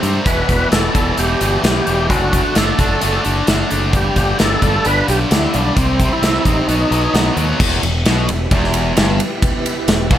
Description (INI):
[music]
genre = classic rock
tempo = 131 BPM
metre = 4/4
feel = straight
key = E minor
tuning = A4 = 439 Hz
[part]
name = distorted electric guitar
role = riff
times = 0.0-10.2 s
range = E2 to D4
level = -19 LUFS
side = equal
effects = overdrive
[part]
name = growling fingered electric bass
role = bass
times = 0.0-10.2 s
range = E1 to G2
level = -19 LUFS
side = equal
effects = overdrive
[part]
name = big rock drum kit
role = drums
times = 0.0-10.2 s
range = crash cymbal, hi-hat, kick drum, ride cymbal, snare drum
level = -17 LUFS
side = equal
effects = none
[part]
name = overdriven tonewheel organ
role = melody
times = 0.3-7.3 s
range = C4 to B4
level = -19 LUFS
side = equal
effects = slow rotary speaker, chorus vibrato
[part]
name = string machine, full ensemble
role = sustained chords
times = 7.6-10.2 s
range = B3 to E5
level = -25 LUFS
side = right 1 dB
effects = ensemble chorus
[sound]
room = light reverb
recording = none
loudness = -13 LUFS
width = side -11 dB against mid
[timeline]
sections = 0.0-7.6 A section; 7.6-10.2 B section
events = none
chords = 0.3 Em; 2.1 D/F#; 3.9 G; 5.8 C5; 6.7 B; 7.6 Em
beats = | 0.27 0.73 1.19 1.65 | 2.10 2.56 3.02 3.48 | 3.94 4.40 4.86 5.32 | 5.77 6.23 6.69 7.15 | 7.60 8.06 8.52 8.97 | 9.43 9.88